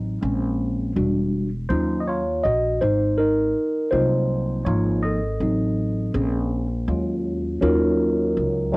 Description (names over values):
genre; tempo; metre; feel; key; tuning
hip hop, jazz-hop; 81 BPM; 4/4; swing 61% on 16ths; Eb dorian; A4 = 440 Hz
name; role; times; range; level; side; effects
mellow tine electric piano; accompaniment; 0.0-8.8 s; F3 to Eb5; -21 LUFS; equal; phaser, cassette tape
upright bass; bass; 0.0-8.8 s; E1 to Eb2; -24 LUFS; equal; none
room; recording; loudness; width
little or no reverb; home recording on cassette; -20 LUFS; side -24 dB against mid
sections
0.0-7.6 A section; 7.6-8.8 B section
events
tine electric piano solo 0.0-7.6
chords
0.2 Bbm9; 1.0 Em9; 1.7 Ebm9; 2.8 Ab13; 4.7 Db69/Ab; 5.4 Adim7; 6.1 Bbm9; 6.9 Ebm11; 7.6 Ebm9